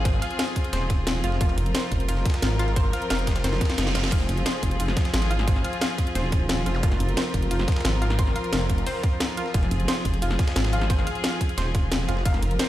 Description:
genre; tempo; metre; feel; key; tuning
dark technical drum and bass; 177 BPM; 4/4; straight; F minor; A4 = 443 Hz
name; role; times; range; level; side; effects
clear studio string section; sustained chords; 0.0-12.7 s; F3 to Bb4; -30 LUFS; left 1 dB; sidechain pumping
wide detuned saw bass; bass; 0.0-12.4 s; F1 to Ab1; -25 LUFS; equal; chorus
analog pluck; arpeggios; 0.1-12.7 s; F4 to F5; -33 LUFS; right 1 dB; chorus, sidechain pumping, ping-pong delay
breakbeat sampler-style drum kit; drums; 0.1-12.7 s; hi-hat, ride cymbal, snare drum; -38 LUFS; right 1 dB; none
drum and bass drum kit; drums; 0.1-12.7 s; crash cymbal, hi-hat, snare drum; -29 LUFS; left 1 dB; overdrive
electronic kick drum; drums; 0.1-12.3 s; none; -23 LUFS; equal; overdrive
vowel-sweep wobble bass; bass; 0.7-7.7, 9.7-12.6 s; Eb1 to F1; -26 LUFS; equal; chorus
reverse cymbal and zap; sound effects; 3.6-4.1, 6.7-6.8 s; none; -36 LUFS; right 4 dB; none
room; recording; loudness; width
little or no reverb; played on a big sound system in a bare room, stone room reverb; -21 LUFS; side -14 dB against mid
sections
0.0-12.7 A section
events
drum fill 3.4-4.1; reverse cymbal 3.6-4.1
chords
0.0 Fm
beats
| 0.05 0.39 0.73 1.07 | 1.41 1.75 2.09 2.42 | 2.76 3.10 3.44 3.78 | 4.12 4.46 4.80 5.14 | 5.48 5.82 6.15 6.49 | 6.83 7.17 7.51 7.85 | 8.19 8.53 8.87 9.20 | 9.54 9.88 10.22 10.56 | 10.90 11.24 11.58 11.92 | 12.26 12.59

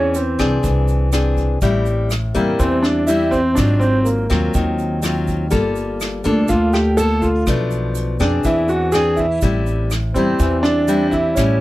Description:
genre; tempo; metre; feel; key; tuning
bossa nova; 123 BPM; 4/4; straight; unclear; A4 = 440 Hz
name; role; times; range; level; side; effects
warm baby grand piano; melody; 0.0-11.6 s; Bb3 to A4; -18 LUFS; equal; none
bright reedy wooden-headed alto flute; second line; 0.0-11.6 s; Bb4 to A5; -27 LUFS; right 8 dB; none
nylon-string guitar; accompaniment; 0.0-11.6 s; G#2 to A4; -20 LUFS; left 3 dB; none
upright bass; bass; 0.0-11.6 s; G1 to F2; -20 LUFS; equal; none
tube shaker; percussion; 0.1-11.6 s; none; -35 LUFS; right 15 dB; none
vintage brush drum kit; drums; 0.2-11.5 s; hi-hat, kick drum, rim click; -25 LUFS; equal; none
room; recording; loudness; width
little or no reverb; none; -15 LUFS; side -16 dB against mid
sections
0.0-11.6 A section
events
none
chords
0.0 Eaug7; 1.6 Am7; 3.6 G#13; 5.5 Gm9; 7.5 Bm7b5; 8.4 E7b13; 9.4 Am7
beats
0.15 0.64 1.13 | 1.61 2.10 2.59 3.08 | 3.56 4.05 4.54 5.03 | 5.51 6.00 6.49 6.98 | 7.46 7.95 8.44 8.93 | 9.42 9.90 10.39 10.88 | 11.37

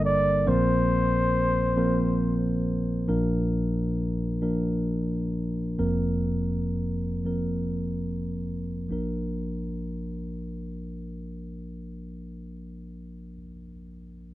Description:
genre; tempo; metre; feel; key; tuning
acoustic folk-pop ballad; 34-46 BPM (dotted quarters); 6/8; straight; Bb major; A4 = 440 Hz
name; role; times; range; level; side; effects
mellow tine electric piano; accompaniment; 0.0-14.3 s; F1 to C5; -26 LUFS; equal; none
breathy flugelhorn; melody; 0.1-2.7 s; C5 to D5; -25 LUFS; left 1 dB; plate reverb
room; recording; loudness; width
light reverb; dark, warm production; -24 LUFS; side -16 dB against mid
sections
0.0-3.1 A section; 3.1-8.9 B section; 8.9-12.4 C section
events
slowing down 3.1-8.9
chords
0.5 Bbsus2; 3.1 Bb; 5.8 Fsus4; 8.9 Bb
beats
| 0.47 1.78 | 3.09 4.41 | 5.79 7.25 | 8.90 10.63

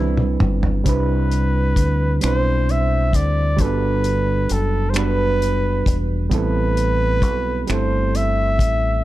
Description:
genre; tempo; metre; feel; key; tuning
slow six-eight R&B; 44 BPM (dotted quarters); 6/8; straight; A dorian; A4 = 440 Hz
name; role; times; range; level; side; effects
overdriven reed electric piano; accompaniment; 0.0-9.0 s; G3 to C5; -23 LUFS; right 6 dB; none
deep dub fingered electric bass; bass; 0.0-9.0 s; E1 to D2; -20 LUFS; left 1 dB; none
cloth-damped thuddy drum kit; drums; 0.2-8.8 s; finger snaps, hi-hat, kick drum, toms; -21 LUFS; equal; none
warm flugelhorn; melody; 0.9-9.0 s; A4 to E5; -23 LUFS; equal; none
room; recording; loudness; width
small room reverb; dark, warm production; -16 LUFS; side -15 dB against mid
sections
0.9-9.0 A section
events
drum fill 0.0-0.9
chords
0.0 D9sus4; 0.9 Cmaj9; 3.6 Gmaj9; 6.3 Am9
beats
| 0.86 2.22 | 3.59 4.95 | 6.31 7.68

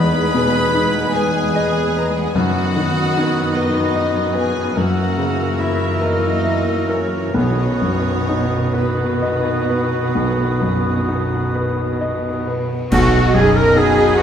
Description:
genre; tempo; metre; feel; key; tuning
classical, romantic movement for piano and orchestra; 42-51 BPM (dotted quarters); 12/8; rubato; B major; A4 = 439 Hz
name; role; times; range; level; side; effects
warm grand piano; melody; 0.0-14.2 s; B1 to E5; -20 LUFS; left 2 dB; none
warm studio violin section; melody; 0.0-14.2 s; B4 to B5; -27 LUFS; left 2 dB; none
bright clarinet; second line; 0.0-14.2 s; F#4 to A#4; -28 LUFS; equal; none
flute section; second line; 0.0-14.2 s; F#5 to E6; -29 LUFS; equal; none
rich studio violin section; second line; 0.0-14.2 s; B3 to B5; -29 LUFS; left 2 dB; none
warm oboe; second line; 0.0-14.2 s; F#4 to B4; -27 LUFS; right 1 dB; none
rich studio viola section; accompaniment; 0.0-14.2 s; D#3 to F#4; -25 LUFS; right 3 dB; none
mellow French horn section; sustained chords; 0.0-14.2 s; G#3 to E4; -27 LUFS; left 2 dB; none
warm studio cello section; bass; 0.0-14.2 s; E2 to A#4; -22 LUFS; right 2 dB; none
timpani; percussion; 2.4-14.1 s; F#2 to B2; -27 LUFS; right 1 dB; none
cymbal swell, clash cymbals and concert bass drum; percussion; 7.3-14.2 s; none; -26 LUFS; right 1 dB; none
dark studio double bass section; bass; 12.9-14.2 s; B1; -22 LUFS; right 4 dB; none
room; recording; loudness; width
wet scoring stage reverb, RT60 1.8 s; none; -15 LUFS; side -8 dB against mid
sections
0.0-12.9 A section; 12.9-14.2 A section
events
band accent 12.9-13.8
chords
0.0 Emaj7; 2.4 B/F#; 4.8 F#7; 7.3 B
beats
1.14 | 2.35 3.56 4.76 6.00 | 7.35 8.75 10.14 11.54 | 12.91 14.17

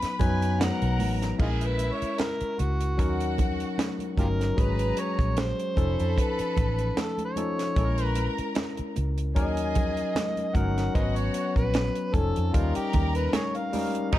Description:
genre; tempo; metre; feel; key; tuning
lush 1970s-style soul; 75 BPM; 4/4; swing 54% on 16ths; unclear; A4 = 440 Hz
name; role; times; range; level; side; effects
overdriven harmonica; melody; 0.0-14.1 s; D#4 to B5; -31 LUFS; right 1 dB; none
clear studio string section; second line; 0.0-14.2 s; E4 to B5; -37 LUFS; equal; none
barky tine electric piano; accompaniment; 0.0-14.2 s; F3 to B4; -30 LUFS; left 4 dB; none
vintage muted fingered electric bass; bass; 0.0-14.2 s; F1 to F#2; -28 LUFS; equal; none
tight funk drum kit; drums; 0.0-14.2 s; crash cymbal, hi-hat, kick drum, snare drum; -28 LUFS; equal; none
congas; percussion; 0.2-13.9 s; none; -36 LUFS; right 4 dB; none
warm horn section; stabs; 14.1-14.2 s; B2 to D#4; -28 LUFS; right 2 dB; none
room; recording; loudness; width
studio reverb; dark, warm production; -24 LUFS; side -14 dB against mid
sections
0.0-1.4 A section; 1.4-14.1 B section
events
harmonica solo 1.4-14.1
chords
0.0 Bmaj7; 1.4 A#m7b5; 3.0 D#m7; 4.6 G#m11; 5.8 F7b13; 7.8 A#m7b5; 9.4 D#m7; 11.0 G#m11; 12.1 F7b13; 12.5 D#7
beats
0.60 | 1.39 2.19 2.99 3.78 | 4.58 5.38 6.17 6.97 | 7.77 8.56 9.36 10.16 | 10.95 11.75 12.54 13.34 | 14.13

